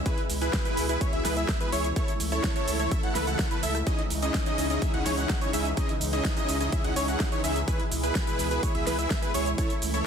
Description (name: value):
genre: EDM, festival progressive house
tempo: 126 BPM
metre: 4/4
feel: straight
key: unclear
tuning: A4 = 440 Hz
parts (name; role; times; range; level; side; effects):
- lush unison pad; sustained chords; 0.0-10.1 s; B2 to E4; -34 LUFS; left 1 dB; chorus, phaser, sidechain pumping
- wide unison lead; arpeggios; 0.1-10.1 s; B4 to F#5; -32 LUFS; equal; sidechain pumping, tape echo
- big supersaw lead; riff; 0.1-10.1 s; C#4 to F#5; -31 LUFS; equal; sidechain pumping, tape echo
- big-room dance drum kit; drums; 0.1-10.0 s; cabasa, hi-hat, rim click, snare drum; -33 LUFS; right 1 dB; overdrive
- electronic kick drum; drums; 0.1-9.7 s; none; -29 LUFS; equal; overdrive
- saturated sub bass; bass; 0.3-10.0 s; G#1 to C#2; -31 LUFS; equal; sidechain pumping
room: light reverb, digital ambience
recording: dense, heavily limited modern master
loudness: -24 LUFS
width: side -7 dB against mid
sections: 0.0-10.1 A section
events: none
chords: 0.1 E/C#; 2.0 A/C#; 3.9 C#madd9; 7.7 E/C#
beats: | 0.06 0.53 1.01 1.49 | 1.96 2.44 2.92 3.39 | 3.87 4.34 4.82 5.30 | 5.77 6.25 6.72 7.20 | 7.68 8.15 8.63 9.11 | 9.58 10.06